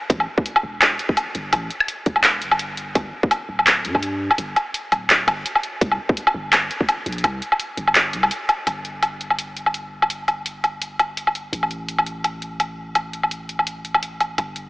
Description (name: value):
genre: half-time drum and bass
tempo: 168 BPM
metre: 4/4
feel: swing 56% on 16ths, half-time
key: unclear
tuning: A4 = 440 Hz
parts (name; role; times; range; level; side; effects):
- long sustained 808-style bass; bass; 0.1-14.7 s; D1 to G2; -32 LUFS; equal; none
- drum and bass drum kit; drums; 0.1-14.6 s; handclaps, hi-hat, woodblock; -19 LUFS; equal; overdrive, studio reverb
- electronic kick drum; drums; 0.1-6.9 s; none; -19 LUFS; equal; overdrive, studio reverb
room: moderate huge ambient reverb, RT60 6.3 s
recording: AM radio sound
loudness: -19 LUFS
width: side -22 dB against mid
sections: 0.0-8.7 A section; 8.7-14.7 B section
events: kick drops out 7.2-8.7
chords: none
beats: | 0.10 0.46 0.81 1.17 | 1.53 1.89 2.24 2.60 | 2.96 3.31 3.67 4.03 | 4.38 4.74 5.10 5.46 | 5.81 6.17 6.53 6.88 | 7.24 7.60 7.96 8.31 | 8.67 9.03 9.38 9.74 | 10.10 10.46 10.81 11.17 | 11.53 11.88 12.24 12.60 | 12.96 13.31 13.67 14.03 | 14.38